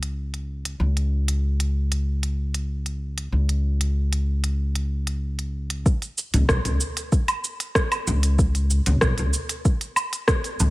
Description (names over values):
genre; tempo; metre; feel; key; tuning
organic downtempo; 95 BPM; 4/4; straight; unclear; A4 = 441 Hz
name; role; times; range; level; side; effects
upright bass; bass; 0.0-10.7 s; B1 to C#2; -22 LUFS; equal; sidechain pumping
organic electronic drum kit; drums; 0.0-10.7 s; cabasa, hi-hat, rim click, woodblock; -24 LUFS; right 1 dB; small room ambience
electronic kick drum; drums; 5.9-10.4 s; none; -20 LUFS; equal; small room ambience
room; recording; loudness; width
digital ambience; none; -21 LUFS; side -19 dB against mid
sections
0.0-5.9 A section; 5.9-10.7 B section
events
none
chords
none